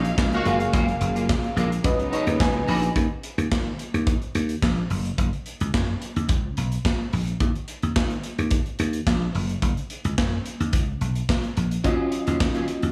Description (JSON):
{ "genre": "early-eighties boogie funk", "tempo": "108 BPM", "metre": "4/4", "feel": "straight", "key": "Eb minor", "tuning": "A4 = 439 Hz", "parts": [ { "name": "warm horn section", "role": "second line", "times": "0.0-0.6 s", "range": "Db3 to Gb4", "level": "-32 LUFS", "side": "equal", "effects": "slapback echo" }, { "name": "FM electric piano", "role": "accompaniment", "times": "0.0-2.9, 11.8-12.9 s", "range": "Bb3 to Ab5", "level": "-29 LUFS", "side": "equal", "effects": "chorus, tremolo, slapback echo" }, { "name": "clear studio string section", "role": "sustained chords", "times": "0.0-2.9 s", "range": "Db3 to F5", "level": "-34 LUFS", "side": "equal", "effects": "none" }, { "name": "electric guitar at the edge of break-up", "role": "riff", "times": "0.0-2.9, 11.8-12.9 s", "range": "Gb3 to Db5", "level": "-33 LUFS", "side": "equal", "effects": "ensemble chorus, slapback echo" }, { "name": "dry thumbed slap bass", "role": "bass", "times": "0.0-12.9 s", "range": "Gb1 to Eb3", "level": "-27 LUFS", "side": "equal", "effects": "none" }, { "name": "modern studio drum kit", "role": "drums", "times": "0.0-12.9 s", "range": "handclaps, hi-hat, kick drum, snare drum", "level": "-28 LUFS", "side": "equal", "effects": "none" } ], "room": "moderate scoring stage reverb, RT60 1.5 s, small room ambience", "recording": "big arena sound", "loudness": "-24 LUFS", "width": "mono", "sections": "0.0-3.0 A section; 3.0-12.9 B section", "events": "FM electric piano fill 1.8-3.0", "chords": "0.5 Gbmaj9; 1.8 Db9sus4; 3.0 Eb5; 4.9 Gb5; 6.3 Bbm; 7.4 Eb5; 9.3 Gb5; 10.7 Bbm; 11.8 Ebm9" }